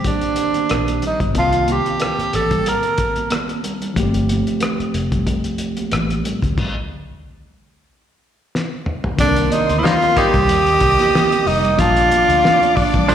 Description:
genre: lush 1970s-style soul.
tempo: 92 BPM.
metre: 4/4.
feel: swing 54% on 16ths.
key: C dorian.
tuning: A4 = 441 Hz.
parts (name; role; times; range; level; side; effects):
breathy tenor saxophone; melody; 0.0-3.3, 9.2-13.1 s; D4 to Bb4; -16 LUFS; right 2 dB; slapback echo.
mellow tine electric piano; accompaniment; 0.0-13.1 s; Eb3 to A5; -23 LUFS; moving between left 7 dB and right 2 dB; auto-pan, slapback echo.
cloth-damped thuddy drum kit; drums; 0.0-13.1 s; crash cymbal, hi-hat, kick drum, rim click, snare drum, toms; -22 LUFS; left 1 dB; none.
congas; percussion; 0.1-13.1 s; none; -28 LUFS; right 4 dB; slapback echo.
vintage muted fingered electric bass; bass; 0.7-13.1 s; F1 to Eb2; -22 LUFS; equal; none.
warm studio string section; second line; 9.2-13.1 s; C5 to Eb6; -25 LUFS; left 5 dB; slapback echo.
warm horn section; stabs; 9.8-10.4 s; G3 to Eb4; -21 LUFS; left 3 dB; slapback echo.
semi-hollow electric guitar; riff; 13.1 s; F3 to D4; -14 LUFS; right 6 dB; none.
room: light reverb, small room ambience.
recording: live gig heard through the venue's PA, recital hall reverb.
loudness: -15 LUFS.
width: side -9 dB against mid.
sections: 0.0-9.2 A section; 9.2-13.1 B section.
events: stop 6.6-9.2; drum fill 8.5-9.2.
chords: 0.0 Cm7; 4.0 G9sus4; 9.2 Cm7; 11.8 Bbmaj7.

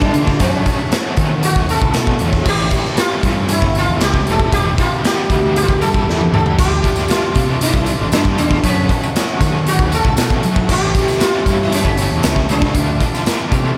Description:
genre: psychedelic rock.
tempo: 117 BPM.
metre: 4/4.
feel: straight.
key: unclear.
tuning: A4 = 436 Hz.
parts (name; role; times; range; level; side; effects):
sitar; melody; 0.0-13.8 s; C#4 to A4; -22 LUFS; equal; digital delay.
combo organ; sustained chords; 0.0-13.8 s; C#5 to D6; -34 LUFS; equal; none.
cranked stack guitar; riff; 0.0-13.8 s; E2 to F#4; -25 LUFS; equal; overdrive, tremolo.
fuzz fingered electric bass; bass; 0.0-13.8 s; E1 to F#3; -21 LUFS; equal; overdrive.
raw garage drum kit; drums; 0.0-13.6 s; crash cymbal, hi-hat, kick drum, snare drum, toms; -19 LUFS; equal; none.
tambourine; percussion; 6.7-13.7 s; none; -36 LUFS; equal; none.
room: light reverb, studio reverb.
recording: none.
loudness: -15 LUFS.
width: mono.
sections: 0.0-13.8 A section.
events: drum fill 6.1-6.6.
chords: 0.4 F#m; 2.5 A; 4.5 Em7; 6.6 Dmadd9; 8.6 F#m; 10.7 A; 12.8 Dmadd9.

